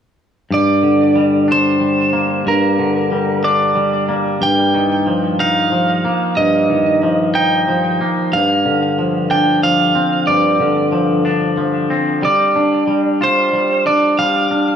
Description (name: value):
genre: rock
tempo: 61 BPM (dotted quarters)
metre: 6/8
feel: straight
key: G minor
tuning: A4 = 443 Hz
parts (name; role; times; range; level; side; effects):
- lightly driven lead guitar; melody; 0.5-14.8 s; Bb4 to G5; -16 LUFS; right 2 dB; analog delay
- twangy electric guitar; arpeggios; 0.5-14.8 s; G2 to F4; -15 LUFS; left 1 dB; spring reverb, analog delay
room: moderate recital hall reverb, RT60 1.8 s, digital ambience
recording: small room ambience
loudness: -13 LUFS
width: side -8 dB against mid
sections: 0.5-14.8 A section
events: none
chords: 0.5 Gm; 4.4 Ebadd9/G; 8.3 F5/G; 12.2 Dm/G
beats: | 0.51 1.48 | 2.46 3.44 | 4.41 5.39 | 6.37 7.35 | 8.32 9.30 | 10.28 11.26 | 12.23 13.21 | 14.18